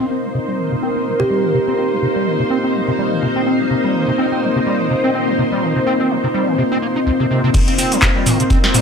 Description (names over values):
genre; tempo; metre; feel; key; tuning
acid house; 125 BPM; 4/4; swing 56% on 16ths; C minor pentatonic; A4 = 440 Hz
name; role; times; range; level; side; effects
string machine, full ensemble; sustained chords; 0.0-8.8 s; Bb3 to C5; -20 LUFS; equal; ensemble chorus, sidechain pumping
deep acid bass; riff; 0.0-8.8 s; C2 to Eb4; -20 LUFS; equal; overdrive, ensemble chorus, sidechain pumping, tape echo
warbly tape-like pad; texture; 0.0-8.8 s; C4 to Eb5; -21 LUFS; left 1 dB; chorus, built-in reverb, sidechain pumping
kalimba; melody; 1.2-1.5 s; G4; -23 LUFS; right 2 dB; tape echo
booming analog drum machine; drums; 7.5-8.8 s; cabasa, crash cymbal, handclaps, hi-hat, snare drum, toms; -17 LUFS; equal; low-pass filter on hats, low-pass filter on perc, low-pass filter on snare, low-pass filter on toms, low-pass filter on cymbals, low-pass filter on room
crunchy breakbeat drum kit; drums; 7.5-8.8 s; hi-hat, snare drum; -30 LUFS; equal; none
electronic kick drum; drums; 7.5-8.6 s; none; -16 LUFS; equal; none
room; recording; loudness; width
moderate plate reverb, RT60 1.5 s, digital ambience; none; -14 LUFS; side -6 dB against mid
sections
0.0-7.5 A section; 7.5-8.8 B section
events
drop 7.5-8.8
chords
0.0 Cm7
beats
0.34 0.82 1.30 | 1.78 2.26 2.74 3.22 | 3.70 4.18 4.66 5.14 | 5.62 6.10 6.58 7.06 | 7.54 8.02 8.50